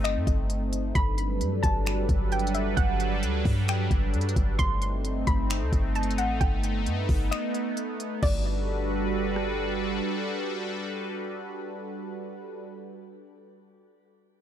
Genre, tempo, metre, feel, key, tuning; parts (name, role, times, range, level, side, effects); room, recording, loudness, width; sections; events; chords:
hip hop, atmospheric cloud-rap; 132 BPM; 4/4; half-time; G major; A4 = 437 Hz
soft round pluck; melody; 0.0-9.6 s; D5 to C6; -33 LUFS; equal; chorus, digital delay
sweeping resonant pad; sustained chords; 0.0-12.6 s; F#3 to B4; -30 LUFS; right 1 dB; chorus, sidechain pumping
clean 808-style bass; bass; 0.0-10.0 s; G1 to G2; -28 LUFS; equal
smooth R&B drum kit; drums; 0.0-9.5 s; crash cymbal, finger snaps, hi-hat, kick drum, rim click; -28 LUFS; equal
little or no reverb; dark, warm production; -25 LUFS; side -10 dB against mid
0.0-8.2 A section; 8.2-11.9 B section
break 7.3-8.2
0.0 Cm6/G; 1.0 Gmaj9; 4.6 Cm6/G; 8.2 Gmaj9